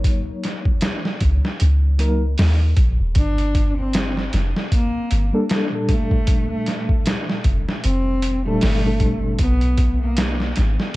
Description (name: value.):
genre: trip hop.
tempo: 77 BPM.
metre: 4/4.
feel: swing 58% on 16ths.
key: unclear.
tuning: A4 = 443 Hz.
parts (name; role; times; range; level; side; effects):
mellow reed electric piano; accompaniment; 0.0-9.4 s; Bb2 to Db5; -25 LUFS; left 1 dB; fast tremolo, tape echo.
trip hop sampler-style drum kit; drums; 0.0-10.9 s; hi-hat, kick drum, snare drum; -20 LUFS; equal; none.
soft 808-style bass; bass; 1.2-10.8 s; Eb1 to Eb2; -18 LUFS; equal; tube saturation.
dark cello; melody; 3.2-10.4 s; A3 to D4; -25 LUFS; equal; vintage 12-bit sampler grit, tape echo.
room: digital ambience.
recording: dark, warm production.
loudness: -17 LUFS.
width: side -19 dB against mid.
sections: 0.0-11.0 A section.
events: none.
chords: 0.0 Ebm; 3.2 Gmadd9; 9.4 N.C..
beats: | 0.05 0.83 1.60 2.38 | 3.16 3.94 4.72 5.50 | 6.28 7.06 7.84 8.62 | 9.40 10.18.